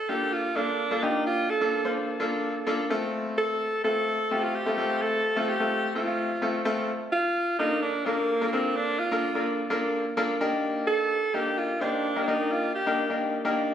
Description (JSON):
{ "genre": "pop", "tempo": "128 BPM", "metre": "4/4", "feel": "straight", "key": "Bb major", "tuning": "A4 = 436 Hz", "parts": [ { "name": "bright alto saxophone", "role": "melody", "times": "0.0-13.2 s", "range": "Bb3 to A4", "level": "-27 LUFS", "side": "right 2 dB", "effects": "ping-pong delay" }, { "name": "bright concert grand piano", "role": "accompaniment", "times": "0.1-13.7 s", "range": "A3 to C5", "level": "-27 LUFS", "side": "left 2 dB", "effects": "none" } ], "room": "light reverb", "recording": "recorded on a phone in the room, studio reverb", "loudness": "-24 LUFS", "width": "side -9 dB against mid", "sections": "0.0-6.9 A section; 6.9-13.7 A section", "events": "none", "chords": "0.0 Bbmaj7; 2.9 F; 6.9 Bbmaj7; 10.4 Ebmaj7", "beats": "0.33 0.80 | 1.26 1.73 2.20 2.67 | 3.14 3.61 4.08 4.54 | 5.01 5.48 5.95 6.42 | 6.89 7.36 7.83 8.29 | 8.76 9.23 9.70 10.17 | 10.64 11.11 11.58 12.04 | 12.51 12.98 13.45" }